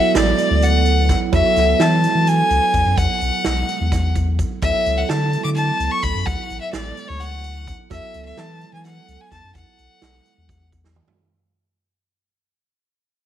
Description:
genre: progressive instrumental, band music in an uneven meter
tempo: 256 BPM (eighths)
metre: 7/8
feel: straight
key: unclear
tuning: A4 = 440 Hz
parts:
  - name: bright violin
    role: melody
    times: 0.0-10.7 s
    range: C#5 to D6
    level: -20 LUFS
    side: left 2 dB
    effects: none
  - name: barky tine electric piano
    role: accompaniment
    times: 0.0-11.2 s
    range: F#3 to A4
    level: -24 LUFS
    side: right 11 dB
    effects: phaser
  - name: warm sub bass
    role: bass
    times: 0.1-11.0 s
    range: A1 to E3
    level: -20 LUFS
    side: left 1 dB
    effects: none
  - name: swinging big-band drum kit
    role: drums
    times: 0.1-11.2 s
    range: hi-hat, kick drum, snare drum, toms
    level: -25 LUFS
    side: right 2 dB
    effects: none
room: light reverb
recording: 1960s-style stereo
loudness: -15 LUFS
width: side -10 dB against mid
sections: 0.0-11.2 A section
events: fade-out 0.0-11.2; drum fill 10.8-11.2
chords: 0.0 D; 1.3 Esus2; 4.6 D; 7.9 Esus2

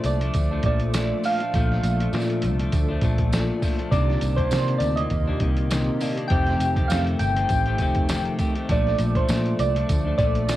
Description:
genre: indie pop, bedroom pop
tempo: 101 BPM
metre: 4/4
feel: swing 55% on 16ths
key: unclear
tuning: A4 = 440 Hz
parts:
  - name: soft electric-piano-like synth keys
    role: melody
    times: 0.0-10.6 s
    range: C5 to G5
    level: -27 LUFS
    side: right 2 dB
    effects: phaser, lush chorus
  - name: clean electric guitar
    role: accompaniment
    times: 0.0-10.6 s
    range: F2 to G4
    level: -27 LUFS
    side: left 3 dB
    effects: wide subtle chorus, vibrato effect, cassette tape
  - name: hollow soft pad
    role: sustained chords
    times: 0.0-10.6 s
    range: Bb2 to A4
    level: -33 LUFS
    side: right 1 dB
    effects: ensemble chorus, cassette tape
  - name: vintage muted picked electric bass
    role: bass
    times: 0.0-10.6 s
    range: F1 to C3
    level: -24 LUFS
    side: equal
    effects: none
  - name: lo-fi sampler-style drum kit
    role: drums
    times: 0.0-10.6 s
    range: hi-hat, kick drum, snare drum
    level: -25 LUFS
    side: equal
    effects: none
  - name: tambourine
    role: percussion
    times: 0.0-10.6 s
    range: none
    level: -40 LUFS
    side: right 5 dB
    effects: none
room: light reverb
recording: home recording on cassette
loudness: -20 LUFS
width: side -14 dB against mid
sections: 0.0-10.6 A section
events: none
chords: 0.0 Bbmaj7; 3.9 Cm9; 6.3 F9; 8.7 Bbmaj7

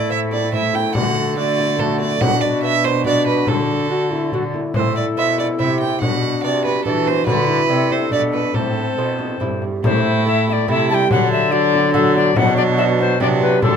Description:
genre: classical, renaissance-style consort dance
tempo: 142 BPM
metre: 3/4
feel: straight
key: A dorian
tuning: A4 = 440 Hz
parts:
  - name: tenor recorder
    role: melody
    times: 0.0-13.8 s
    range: E4 to A5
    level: -22 LUFS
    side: left 8 dB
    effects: none
  - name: rich violin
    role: second line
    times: 0.0-13.8 s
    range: D4 to G5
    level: -21 LUFS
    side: right 6 dB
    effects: none
  - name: clear trombone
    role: accompaniment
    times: 0.0-13.8 s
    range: F#3 to F#4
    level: -22 LUFS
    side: left 3 dB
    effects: none
  - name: lute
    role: accompaniment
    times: 0.0-13.8 s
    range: G2 to C5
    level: -24 LUFS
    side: right 6 dB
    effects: none
  - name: warm cello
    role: bass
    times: 0.0-13.8 s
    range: G2 to E3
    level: -22 LUFS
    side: right 1 dB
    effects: none
  - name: frame drum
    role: percussion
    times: 0.3-13.8 s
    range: none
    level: -24 LUFS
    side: left 2 dB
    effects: none
room: light reverb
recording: close, detailed microphones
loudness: -15 LUFS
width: side -7 dB against mid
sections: 0.0-9.8 A section; 9.8-13.8 A section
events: none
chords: 0.0 Am; 1.0 D; 2.2 Bm; 3.5 D; 4.8 Am; 6.0 Bm; 7.3 D; 8.6 Am; 11.1 D; 12.4 Bm

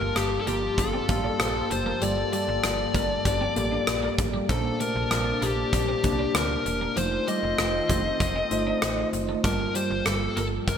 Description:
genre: 1980s-style pop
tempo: 97 BPM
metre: 4/4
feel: straight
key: G minor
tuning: A4 = 440 Hz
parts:
  - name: dark smooth lead guitar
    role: melody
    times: 0.0-10.8 s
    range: G4 to Eb5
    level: -28 LUFS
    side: left 3 dB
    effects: overdrive
  - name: tine electric piano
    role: accompaniment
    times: 0.0-10.8 s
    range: G2 to A5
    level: -30 LUFS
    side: equal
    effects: medium stereo tremolo
  - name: phased analog pad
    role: sustained chords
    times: 0.0-10.8 s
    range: C3 to G4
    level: -37 LUFS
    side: equal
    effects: phaser, chorus
  - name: mellow horn section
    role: stabs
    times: 0.0-10.8 s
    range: C4 to A5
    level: -36 LUFS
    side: equal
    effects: none
  - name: slap-like FM bass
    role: bass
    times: 0.0-10.8 s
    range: E1 to D2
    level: -32 LUFS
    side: right 1 dB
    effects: none
  - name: big rock drum kit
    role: drums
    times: 0.2-10.8 s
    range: hi-hat, kick drum, rim click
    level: -29 LUFS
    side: equal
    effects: gated reverb
  - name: twelve-string electric guitar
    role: riff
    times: 0.5-10.5 s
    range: F3 to D4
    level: -36 LUFS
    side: right 3 dB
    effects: lush chorus
room: moderate plate reverb, RT60 3.3 s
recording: bright 1980s-style digital production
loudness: -23 LUFS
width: side -8 dB against mid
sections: 0.0-10.8 A section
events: none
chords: 0.0 Gm9; 4.5 Bbmaj9; 7.0 F7; 9.4 Gm9

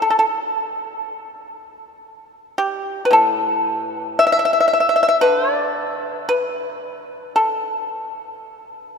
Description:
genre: chinese traditional, Chinese solo plucked strings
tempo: 51-58 BPM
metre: 4/4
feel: rubato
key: D zhi mode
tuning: A4 = 440 Hz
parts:
  - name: pipa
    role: solo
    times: 0.0-8.9 s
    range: A2 to E5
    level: -17 LUFS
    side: left 1 dB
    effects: none
room: wet cathedral reverb, RT60 5.0 s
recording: recorded in a church or concert hall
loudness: -17 LUFS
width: side -6 dB against mid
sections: 0.0-9.0 A section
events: none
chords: none

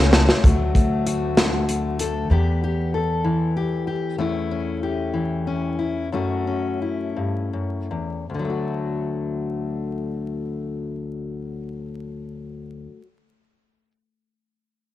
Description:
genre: indie folk with a building arrangement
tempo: 51-64 BPM (dotted quarters)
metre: 6/8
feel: straight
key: D major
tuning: A4 = 440 Hz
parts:
  - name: upright bass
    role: bass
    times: 0.0-4.1 s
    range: C#2 to E2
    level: -22 LUFS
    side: equal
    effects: none
  - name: natural country drum kit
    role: drums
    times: 0.1-2.1 s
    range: hi-hat, kick drum, snare drum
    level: -17 LUFS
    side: equal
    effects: cassette tape
  - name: fingerpicked steel-string acoustic guitar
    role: accompaniment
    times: 0.4-13.1 s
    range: D2 to A4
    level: -24 LUFS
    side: left 3 dB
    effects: cassette tape
room: light reverb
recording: home recording on cassette, vinyl crackle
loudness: -21 LUFS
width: side -14 dB against mid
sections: 0.4-8.3 A section; 8.3-13.0 B section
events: drum fill 0.0-0.4; slowing down 4.2-8.3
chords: 0.4 D; 2.3 Em; 4.2 A/E; 6.1 F#m; 8.3 D

